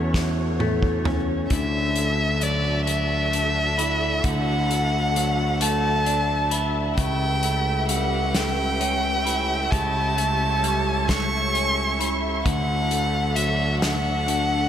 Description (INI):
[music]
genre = post-rock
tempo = 44 BPM (dotted quarters)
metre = 6/8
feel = straight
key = unclear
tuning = A4 = 435 Hz
[part]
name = dark chamber string section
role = sustained chords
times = 0.0-14.7 s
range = C#3 to E5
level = -32 LUFS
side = right 1 dB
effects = none
[part]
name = electric guitar through a small old amp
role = arpeggios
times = 0.0-14.7 s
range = C#3 to E4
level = -28 LUFS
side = left 2 dB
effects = phaser, diffuse ambient delay
[part]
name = growling fingered electric bass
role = bass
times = 0.0-14.7 s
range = C#2 to E2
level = -25 LUFS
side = equal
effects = overdrive
[part]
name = loose indie drum kit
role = drums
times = 0.1-14.5 s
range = hi-hat, kick drum, snare drum, toms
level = -26 LUFS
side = equal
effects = none
[part]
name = warm violin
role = melody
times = 1.5-14.7 s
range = D5 to C#6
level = -24 LUFS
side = right 1 dB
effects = diffuse ambient delay
[sound]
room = moderate huge ambient reverb, RT60 4.6 s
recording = dreamy mix soaked in reverb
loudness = -20 LUFS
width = side -9 dB against mid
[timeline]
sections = 0.0-1.5 A section; 1.5-14.7 B section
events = drum fill 0.1-1.5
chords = 0.0 F#m7/E; 1.5 Dadd9; 7.0 A7/C#; 12.5 Dadd9